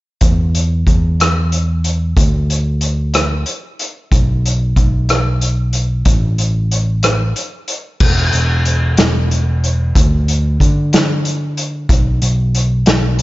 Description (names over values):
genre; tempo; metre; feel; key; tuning
folk rock and heartland rock; 62 BPM (dotted quarters); 6/8; straight; unclear; A4 = 440 Hz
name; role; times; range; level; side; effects
picked electric bass; bass; 0.2-13.2 s; E1 to D3; -15 LUFS; equal; none
vintage drum kit; drums; 0.2-13.2 s; crash cymbal, hi-hat, kick drum, rim click, snare drum; -15 LUFS; equal; none
room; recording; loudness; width
little or no reverb; nothing above 7.6 kHz; -12 LUFS; side -18 dB against mid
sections
0.2-8.0 A section; 8.0-13.2 B section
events
none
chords
none